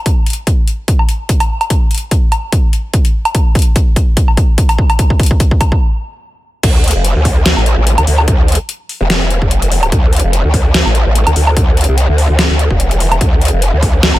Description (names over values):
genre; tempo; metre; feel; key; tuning
heavy wobble dubstep; 146 BPM; 4/4; swing 55% on 16ths, half-time; D minor; A4 = 440 Hz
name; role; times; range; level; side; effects
dubstep drum kit; drums; 0.1-14.2 s; crash cymbal, hi-hat, snare drum, woodblock; -16 LUFS; equal; overdrive, high-pass filter on hats, high-pass filter on perc, high-pass filter on cymbals, high-pass filter on snare, high-pass filter on room
electronic kick drum; drums; 0.1-13.9 s; none; -11 LUFS; equal; none
growl bass; bass; 6.6-14.2 s; E1 to D2; -11 LUFS; equal; chorus, overdrive
room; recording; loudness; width
little or no reverb; none; -10 LUFS; side -16 dB against mid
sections
0.0-6.6 A section; 6.6-14.2 B section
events
build-up 0.0-6.6; drum fill 0.1-5.8; stop 5.8-6.6; drop 6.6-14.2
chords
none